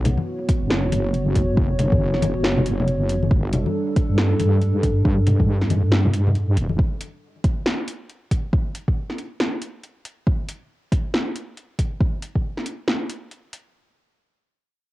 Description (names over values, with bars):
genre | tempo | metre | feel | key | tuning
deep dubstep | 138 BPM | 4/4 | swing 60% on 16ths, half-time | unclear | A4 = 440 Hz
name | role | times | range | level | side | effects
dark analog pad | sustained chords | 0.0-6.8 s | G3 to C#5 | -26 LUFS | right 1 dB | chorus, cassette tape
wobble bass | bass | 0.0-6.8 s | D1 to G2 | -20 LUFS | equal | chorus, transformer saturation
deep house drum kit | drums | 0.1-13.6 s | hi-hat, snare drum | -25 LUFS | equal | overdrive
congas | percussion | 0.1-6.8 s | none | -25 LUFS | left 2 dB | none
electronic kick drum | drums | 0.5-12.4 s | none | -20 LUFS | equal | overdrive
room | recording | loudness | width
light reverb | home recording on cassette | -19 LUFS | side -17 dB against mid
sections
0.0-13.7 A section; 13.7-14.9 B section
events
filter sweep on wobble bass 0.0-6.8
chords
0.0 B5; 3.3 G5; 6.8 N.C.